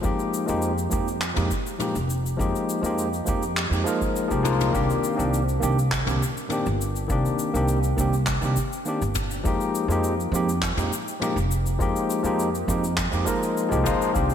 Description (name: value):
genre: sunset chillout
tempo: 102 BPM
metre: 4/4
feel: straight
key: unclear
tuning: A4 = 440 Hz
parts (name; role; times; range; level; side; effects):
- barky tine electric piano; accompaniment; 0.0-14.3 s; Eb3 to Bb4; -24 LUFS; moving between left 4 dB and right 4 dB; auto-pan, digital delay
- upright bass; bass; 0.0-14.3 s; F1 to F2; -26 LUFS; right 1 dB; none
- electronic kick drum; drums; 0.0-14.3 s; none; -30 LUFS; right 1 dB; none
- jazz brush drum kit; drums; 0.0-14.3 s; cabasa, handclaps, toms; -30 LUFS; left 2 dB; gated reverb
room: moderate lush hall reverb, RT60 2.4 s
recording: bright 1980s-style digital production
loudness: -22 LUFS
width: side -9 dB against mid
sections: 0.0-4.7 A section; 4.7-14.3 B section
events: none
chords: 0.0 Fm11; 4.7 Cm9; 9.4 Fm11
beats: | 0.04 0.63 1.21 1.80 | 2.39 2.98 3.57 4.16 | 4.74 5.33 5.92 6.51 | 7.10 7.68 8.27 8.86 | 9.45 10.04 10.63 11.21 | 11.80 12.39 12.98 13.57 | 14.15